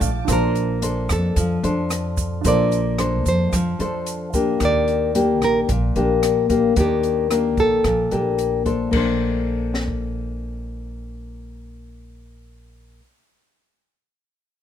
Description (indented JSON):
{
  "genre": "bossa nova",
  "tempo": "111 BPM",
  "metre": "4/4",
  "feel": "straight",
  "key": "Bb major",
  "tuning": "A4 = 440 Hz",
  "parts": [
    { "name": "nylon-string guitar", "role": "accompaniment", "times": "0.0-13.1 s", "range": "Bb2 to C5", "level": "-21 LUFS", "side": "left 4 dB", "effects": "none" },
    { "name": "warm grand piano", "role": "accompaniment", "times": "0.0-4.6 s", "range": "D4 to A5", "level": "-30 LUFS", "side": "right 6 dB", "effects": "none" },
    { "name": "upright bass", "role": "bass", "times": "0.0-13.0 s", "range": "Bb1 to F2", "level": "-25 LUFS", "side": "equal", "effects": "none" },
    { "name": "open jazz drum kit", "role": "drums", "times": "0.0-10.0 s", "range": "crash cymbal, hi-hat, kick drum, rim click, snare drum", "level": "-28 LUFS", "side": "equal", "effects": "none" },
    { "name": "tube shaker", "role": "percussion", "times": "0.0-4.6 s", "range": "none", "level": "-34 LUFS", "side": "right 12 dB", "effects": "none" },
    { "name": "nylon-string guitar", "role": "melody", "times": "0.3-8.4 s", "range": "G4 to D5", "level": "-22 LUFS", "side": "right 4 dB", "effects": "none" }
  ],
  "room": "little or no reverb",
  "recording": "minimal, uncompressed stereo recording",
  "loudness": "-18 LUFS",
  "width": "side -9 dB against mid",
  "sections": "0.3-8.9 A section; 8.9-13.3 B section",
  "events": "grand piano fill 0.0; nylon-string guitar solo 0.3-8.9",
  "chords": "0.3 Bbmaj9; 4.6 Ebmaj7; 8.9 Bbmaj9"
}